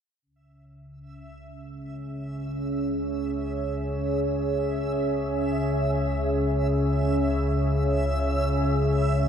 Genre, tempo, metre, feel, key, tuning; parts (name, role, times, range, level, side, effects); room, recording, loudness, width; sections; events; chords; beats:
dark ambient drone; free time; C# minor; A4 = 442 Hz
deep dark ambient pad; sustained chords; 1.7-9.3 s; C#4 to C#5; -28 LUFS; right 1 dB; chorus, built-in reverb
analog drone; drone; 1.0-9.3 s; C#2 to C#3; -27 LUFS; equal; chorus
backwards swelling texture; texture; 1.3-9.3 s; E5; -35 LUFS; equal; built-in reverb
wet cathedral reverb, RT60 6.3 s; -23 LUFS; side -8 dB against mid
0.3-9.3 A section
fade-in on synth drone 0.3-9.3; fade-in on synth texture 0.3-9.3; fade-out on ambient pad 0.3-9.3
0.3 C#m
free time